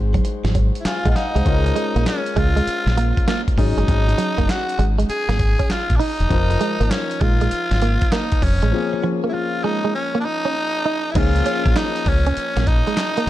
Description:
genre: R&B, new jack swing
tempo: 99 BPM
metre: 4/4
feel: swing 66% on 16ths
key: Db major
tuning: A4 = 440 Hz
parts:
  - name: warm concert grand piano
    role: accompaniment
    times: 0.0-13.3 s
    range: F3 to Ab5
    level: -27 LUFS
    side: left 6 dB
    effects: none
  - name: deep dub fingered electric bass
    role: bass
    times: 0.0-13.3 s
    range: Fb1 to Db2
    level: -19 LUFS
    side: equal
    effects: none
  - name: direct-recorded clean electric guitar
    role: riff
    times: 0.1-13.3 s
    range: F3 to Eb4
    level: -25 LUFS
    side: right 5 dB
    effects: analog chorus
  - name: dusty soul sampler-style drum kit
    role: drums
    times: 0.1-13.3 s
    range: crash cymbal, handclaps, hi-hat, kick drum, snare drum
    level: -21 LUFS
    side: equal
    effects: none
  - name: raspy tenor saxophone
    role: melody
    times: 0.8-13.3 s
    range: Db4 to Ab4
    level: -23 LUFS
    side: equal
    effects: none
room: little or no reverb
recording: dark, warm production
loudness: -17 LUFS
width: side -14 dB against mid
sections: 0.0-1.5 A section; 1.5-11.2 B section; 11.2-13.3 C section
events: break 8.7-11.2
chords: 0.0 Ab7; 1.5 Db6; 3.6 Ab7sus4; 6.3 F7sus4; 8.7 Bbm7; 11.2 Db6

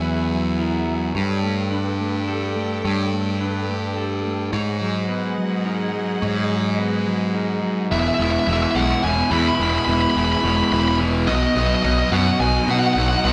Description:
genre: rock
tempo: 106 BPM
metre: 3/4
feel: straight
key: unclear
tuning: A4 = 442 Hz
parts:
  - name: clear studio string section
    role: sustained chords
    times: 0.0-13.3 s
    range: B3 to G#5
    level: -31 LUFS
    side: equal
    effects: none
  - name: electric guitar through a small old amp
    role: arpeggios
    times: 0.0-13.3 s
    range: A4 to C#5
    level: -37 LUFS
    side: equal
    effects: none
  - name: mellow electric guitar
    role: arpeggios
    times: 0.0-13.3 s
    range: G#2 to G4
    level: -28 LUFS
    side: equal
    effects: none
  - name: fuzz picked electric bass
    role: bass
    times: 0.0-13.3 s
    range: E1 to B2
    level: -25 LUFS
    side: equal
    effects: overdrive
  - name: fuzz lead guitar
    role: melody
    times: 7.9-13.3 s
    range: D#5 to B5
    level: -24 LUFS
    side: equal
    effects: distortion
  - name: biting overdriven guitar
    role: riff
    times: 7.9-13.3 s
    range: E2 to B3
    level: -24 LUFS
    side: equal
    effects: none
room: wet large studio reverb, RT60 0.8 s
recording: band playing live in one room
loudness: -21 LUFS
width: mono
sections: 0.0-7.9 A section; 7.9-13.3 B section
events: build-up 7.9-13.3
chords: 0.0 Eadd9; 1.2 Gadd9; 4.5 G#m7; 7.9 E; 11.3 B

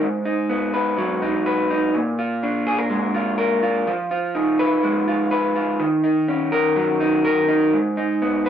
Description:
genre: indie pop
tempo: 124 BPM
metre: 4/4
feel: straight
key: Eb minor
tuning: A4 = 440 Hz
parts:
  - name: electric guitar through a small old amp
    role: solo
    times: 0.0-8.5 s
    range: Ab2 to Cb5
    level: -18 LUFS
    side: equal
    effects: none
room: wet studio reverb, RT60 0.7 s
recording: band playing live in one room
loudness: -18 LUFS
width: side -9 dB against mid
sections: 0.0-8.5 A section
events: none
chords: 0.0 Abm7; 1.9 Bb7; 3.9 Fm7b5; 5.8 Ebm7; 7.7 Abm

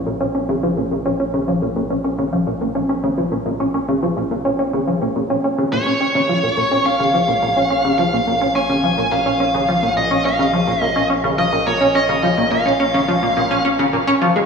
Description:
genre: ambient, sequencer-driven space music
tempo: 106 BPM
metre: 4/4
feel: straight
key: Bb minor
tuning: A4 = 440 Hz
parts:
  - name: warm sub bass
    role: bass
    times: 0.0-14.5 s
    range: Bb1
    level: -31 LUFS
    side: left 2 dB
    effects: none
  - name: plucky analog bass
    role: riff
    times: 0.1-14.4 s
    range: Bb2 to Db4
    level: -17 LUFS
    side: equal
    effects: wide subtle chorus, tape echo
  - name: high-gain lead guitar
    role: melody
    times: 5.7-13.6 s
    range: Db5 to Ab5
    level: -18 LUFS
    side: equal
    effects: distortion, tape echo
room: wet plate reverb, RT60 3.2 s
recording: dreamy mix soaked in reverb, small room reverb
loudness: -15 LUFS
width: side -5 dB against mid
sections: 0.0-14.5 A section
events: filter sweep on analog synth bass 0.0-14.5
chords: 0.0 Bbm

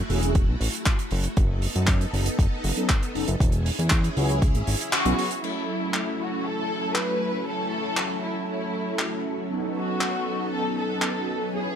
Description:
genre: nu-disco, nu disco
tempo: 118 BPM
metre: 4/4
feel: straight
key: F# dorian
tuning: A4 = 440 Hz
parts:
  - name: string machine, full ensemble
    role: sustained chords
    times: 0.0-11.8 s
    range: E3 to A4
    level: -33 LUFS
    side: left 1 dB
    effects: ensemble chorus, sidechain pumping
  - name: fat analog bass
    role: bass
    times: 0.0-5.1 s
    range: E1 to F#2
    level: -24 LUFS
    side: equal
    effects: none
  - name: mellow synth brass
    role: accompaniment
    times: 0.1-11.8 s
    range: F#3 to A4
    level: -29 LUFS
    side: right 1 dB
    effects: chorus, phaser, cassette tape, sidechain pumping, digital delay
  - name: damped 70s drum kit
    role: drums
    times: 0.1-11.1 s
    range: crash cymbal, handclaps, hi-hat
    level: -28 LUFS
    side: equal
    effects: none
  - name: electronic kick drum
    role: drums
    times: 0.4-4.5 s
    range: none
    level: -22 LUFS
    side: equal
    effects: none
  - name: dark studio violin section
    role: melody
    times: 4.9-11.8 s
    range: E4 to B4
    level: -29 LUFS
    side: left 2 dB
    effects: tape echo
room: light reverb, studio ambience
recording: none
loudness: -22 LUFS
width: side -8 dB against mid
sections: 0.0-5.4 A section; 5.4-11.8 B section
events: filter sweep on analog polysynth 0.0-5.4; kick drops out 4.9-5.4; band accent 4.9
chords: 0.0 F#m7; 1.4 B7/F#; 3.4 E6; 5.4 F#m7; 9.5 B7/F#

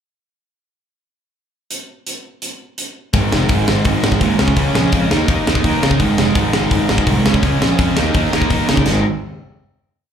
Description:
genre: punk rock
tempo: 168 BPM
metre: 4/4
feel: straight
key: unclear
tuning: A4 = 439 Hz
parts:
  - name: tight metal drum kit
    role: drums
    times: 1.7-8.9 s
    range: hi-hat, kick drum, snare drum, splash cymbal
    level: -18 LUFS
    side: equal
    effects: none
  - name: cranked stack guitar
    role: riff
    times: 3.1-9.0 s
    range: Ab2 to Eb4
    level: -21 LUFS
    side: left 11 dB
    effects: overdrive, slapback echo
  - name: distorted electric guitar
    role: riff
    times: 3.1-9.0 s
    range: Ab2 to Eb4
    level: -19 LUFS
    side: right 10 dB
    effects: distortion, slapback echo
  - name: fuzz picked electric bass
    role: bass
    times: 3.1-9.0 s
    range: F1 to Db3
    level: -18 LUFS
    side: equal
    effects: overdrive
room: little or no reverb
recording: live gig heard through the venue's PA, club reverb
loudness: -13 LUFS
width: side -8 dB against mid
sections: 1.7-3.1 pickup bar; 3.1-8.9 verse; 8.9-10.1 final chord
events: none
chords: 1.7 N.C.; 3.1 Ab5; 4.4 Db; 5.1 Eb5; 6.0 Ab5; 7.3 Db; 8.0 Eb5; 8.9 Ab5

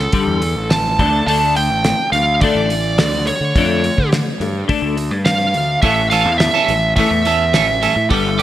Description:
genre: indie rock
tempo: 105 BPM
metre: 4/4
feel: straight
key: D harmonic minor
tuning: A4 = 440 Hz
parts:
  - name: fuzz lead guitar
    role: melody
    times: 0.0-8.4 s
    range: A4 to A5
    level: -17 LUFS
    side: right 2 dB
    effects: distortion
  - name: overdriven electric guitar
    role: riff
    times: 0.0-8.4 s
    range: G2 to D4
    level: -21 LUFS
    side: left 6 dB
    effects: ensemble chorus
  - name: fuzz fingered electric bass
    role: bass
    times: 0.0-8.4 s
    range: G1 to D3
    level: -20 LUFS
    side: equal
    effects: overdrive
  - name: cloth-damped thuddy drum kit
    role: drums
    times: 0.1-8.4 s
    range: hi-hat, kick drum, snare drum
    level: -20 LUFS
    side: equal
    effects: gated reverb
  - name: biting overdriven guitar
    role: riff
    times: 5.8-8.4 s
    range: E3 to A4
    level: -18 LUFS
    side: right 8 dB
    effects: lush chorus
room: light reverb, small room ambience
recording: bright 1980s-style digital production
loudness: -13 LUFS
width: side -13 dB against mid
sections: 0.0-8.4 A section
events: none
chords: 0.0 Gsus2; 1.0 D5; 5.8 A

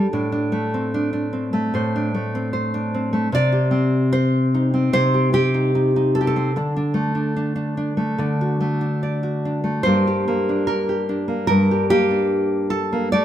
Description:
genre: folk, solo fingerstyle acoustic guitar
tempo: 74 BPM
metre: 4/4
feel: rubato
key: G harmonic minor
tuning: A4 = 440 Hz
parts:
  - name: nylon-string guitar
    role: solo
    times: 0.0-13.2 s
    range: G2 to D5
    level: -18 LUFS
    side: equal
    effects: none
room: wet stone room reverb, RT60 1.2 s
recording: band playing live in one room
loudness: -18 LUFS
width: side -11 dB against mid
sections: 0.0-13.2 A section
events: none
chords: 0.1 Amadd11; 3.3 Cm; 6.5 D; 9.8 Gm

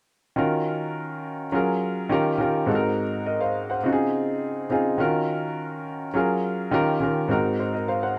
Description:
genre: soul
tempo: 104 BPM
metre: 4/4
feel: straight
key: Eb dorian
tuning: A4 = 440 Hz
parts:
  - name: warm concert grand piano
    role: accompaniment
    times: 0.4-8.2 s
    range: Ab2 to Gb5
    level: -25 LUFS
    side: equal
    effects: none
room: light reverb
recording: dry, close 1970s-style studio recording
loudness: -25 LUFS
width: mono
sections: 0.4-8.2 A section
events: none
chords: 0.4 Ebm7; 1.5 Gbmaj7; 2.1 Eb7; 2.7 Ab7; 3.8 Dbmaj7; 5.0 Ebm7; 6.2 Gbmaj7; 6.7 Eb7; 7.3 Ab7

